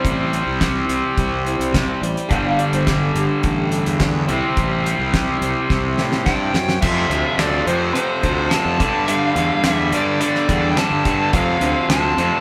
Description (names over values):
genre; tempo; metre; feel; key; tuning
classic rock; 106 BPM; 4/4; straight; unclear; A4 = 440 Hz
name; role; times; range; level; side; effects
picked steel-string acoustic guitar; accompaniment; 0.0-12.4 s; C3 to C5; -33 LUFS; equal; none
biting overdriven guitar; riff; 0.0-12.4 s; F2 to C4; -24 LUFS; equal; none
distorted electric guitar; riff; 0.0-12.4 s; F2 to C4; -26 LUFS; equal; distortion
fuzz fingered electric bass; bass; 0.0-12.3 s; G1 to A2; -26 LUFS; equal; overdrive
damped 70s drum kit; drums; 0.0-12.3 s; crash cymbal, hi-hat, kick drum, snare drum; -25 LUFS; equal; none
clean lap steel guitar; second line; 2.3-3.7 s; G4 to G5; -27 LUFS; equal; none
dark smooth lead guitar; melody; 6.3-12.4 s; C5 to A5; -24 LUFS; equal; overdrive
room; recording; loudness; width
wet stone room reverb, RT60 1.1 s; band playing live in one room; -19 LUFS; mono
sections
0.0-6.8 A section; 6.8-12.4 B section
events
drum fill 5.7-6.8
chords
0.0 C; 2.3 Gsus2; 4.3 C; 6.8 F; 8.8 Gadd9; 11.3 F